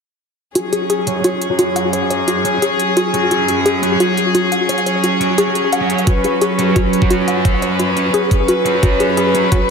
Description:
dark technical drum and bass; 174 BPM; 4/4; straight; A4 = 439 Hz
rich chamber string section; sustained chords; 0.6-9.7 s; F#3 to B4; -16 LUFS; equal; sidechain pumping
warbly dusty pluck; arpeggios; 0.6-9.6 s; F#4 to F#5; -18 LUFS; left 2 dB; chorus, sidechain pumping, ping-pong delay
electronic hi-hat; drums; 0.6-9.6 s; -24 LUFS; right 1 dB
thick fuzz guitar; stabs; 1.1-9.4 s; C#4 to C#5; -22 LUFS; right 2 dB; distortion, low-pass filter, ping-pong delay
electronic kick drum; drums; 6.1-9.6 s; -16 LUFS; equal
wet lush hall reverb, RT60 1.9 s; dreamy mix soaked in reverb; -13 LUFS; side -5 dB against mid
0.6-9.7 A section
filter sweep on distorted electric guitar 0.6-9.7
0.6 F#5

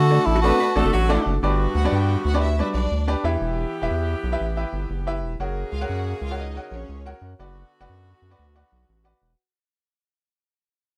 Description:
soul; 121 BPM; 4/4; swing 65% on 8ths; G major; A4 = 440 Hz
breathy tenor saxophone; melody; 0.0-0.9 s; E4 to F#4; -23 LUFS; equal
edgy saxophone section; second line; 0.0-9.2 s; C#3 to B4; -32 LUFS; equal
rich studio violin section; second line; 0.0-7.2 s; C#4 to A5; -36 LUFS; equal
clear grand piano; accompaniment; 0.0-9.3 s; G2 to F#5; -29 LUFS; equal
round analog bass; bass; 0.0-9.3 s; E1 to D3; -26 LUFS; equal
hollow-body jazz guitar; riff; 0.4-1.4 s; A3 to B4; -30 LUFS; equal
light reverb; dark, warm production; -23 LUFS; mono
0.0-1.4 A section; 1.4-9.4 B section
fade-out 1.4-9.4
0.0 D; 1.4 G; 3.2 Em; 5.4 F#; 7.4 Bm/F#

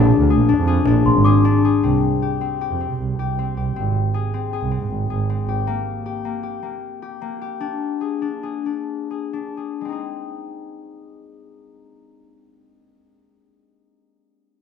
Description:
contemporary instrumental, chamber music in an uneven meter; 125-158 BPM; 5/4; straight; Ab lydian; A4 = 437 Hz
concert harp; arpeggios; 0.0-13.3 s; Ab3 to Ab4; -22 LUFS; left 9 dB
rich double bass; bass; 0.0-5.6 s; Ab1 to C3; -19 LUFS; right 5 dB
frame drum; percussion; 0.3-1.7 s; -27 LUFS; right 5 dB
celesta; texture; 1.1-2.0 s; C6 to D6; -23 LUFS; left 1 dB
moderate recital hall reverb, RT60 1.4 s; dark, warm production; -18 LUFS; side -7 dB against mid
0.0-1.8 A section; 1.8-9.8 B section; 9.8-14.6 C section
slowing down 6.4-9.8
0.0 Bb7; 1.8 C5; 3.8 Ab; 5.7 Gm/Bb; 7.6 N.C.; 9.8 Ab

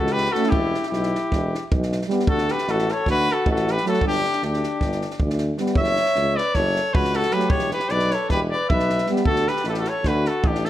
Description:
balkan folk, Balkan brass band; 309 BPM (eighths); 9/8; straight; D major; A4 = 442 Hz
clear trumpet; melody; 0.0-10.7 s; G4 to E5; -23 LUFS; equal
mellow flugelhorn; second line; 0.0-10.7 s; D4 to C#5; -27 LUFS; left 3 dB
warm tuba; bass; 0.0-10.7 s; E1 to D2; -25 LUFS; equal
compact cocktail drum kit; percussion; 0.1-10.7 s; kick drum, snare drum; -26 LUFS; right 1 dB
mellow trombone; accompaniment; 0.4-9.2 s; F#3 to A3; -27 LUFS; right 5 dB
warm euphonium; accompaniment; 0.4-9.3 s; A3 to C#4; -29 LUFS; left 4 dB
light reverb; -19 LUFS; side -12 dB against mid
0.0-10.7 A section
0.0 F#m; 0.5 Em; 2.3 D; 4.0 G5; 5.8 F#m; 7.5 Em; 9.3 D

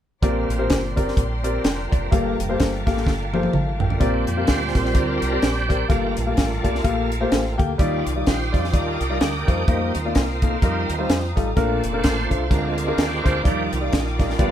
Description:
uptempo gospel; 127 BPM; 4/4; swing 57% on 8ths; Bb major; A4 = 435 Hz
warm grand piano; accompaniment; 0.2-14.5 s; G2 to A5; -24 LUFS; left 2 dB
bright tonewheel organ; sustained chords; 0.2-14.5 s; D3 to C5; -27 LUFS; right 3 dB; slow rotary speaker, chorus vibrato
rich studio string section; sustained chords; 0.2-14.5 s; D5 to Eb6; -34 LUFS; left 2 dB
deep dub fingered electric bass; bass; 0.2-14.5 s; F1 to F2; -26 LUFS; equal
tight funk drum kit; drums; 0.2-14.5 s; hi-hat, kick drum, snare drum, toms; -21 LUFS; equal
light reverb; band playing live in one room; -19 LUFS; side -10 dB against mid
0.2-4.0 A section; 4.0-14.5 B section
drum fill 3.1-4.0; grand piano fill 3.3-4.0; tonewheel organ solo 4.0-14.5
0.2 Bb69; 2.1 Gm9; 4.0 Bb69; 5.9 Gm9; 7.8 Ebmaj9; 9.7 F7sus4; 10.6 F9sus4; 11.6 Bbmaj7; 12.5 Bb7/D; 13.5 Ebmaj9

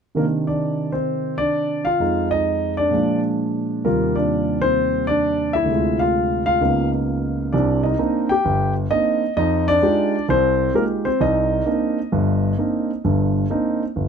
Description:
solo jazz; 130 BPM; 4/4; swing 66% on 8ths; C minor; A4 = 440 Hz
warm grand piano; solo; 0.1-14.1 s; G1 to G5; -18 LUFS; equal
little or no reverb; close, detailed microphones; -18 LUFS; side -6 dB against mid
0.2-7.5 A section; 7.5-14.1 B section
0.2 Cmadd9; 2.0 Fm7; 2.9 Bb7; 3.8 Eb69; 5.7 Dm7b5; 6.6 Db13; 7.5 Cm9; 9.4 Fm9; 11.2 Cm9

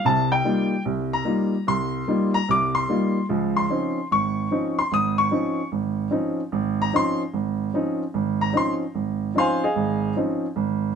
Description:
jazz; 148 BPM; 4/4; swing 66% on 8ths; F mixolydian, Db major from 3.3 s; A4 = 440 Hz
warm baby grand piano; solo; 0.0-10.9 s; Ab1 to Eb6; -21 LUFS; equal
moderate studio reverb, RT60 0.8 s; minimal, uncompressed stereo recording; -21 LUFS; side -7 dB against mid
0.0-3.3 A section; 3.3-11.0 A section
0.0 F9sus4; 3.3 Dbmaj9

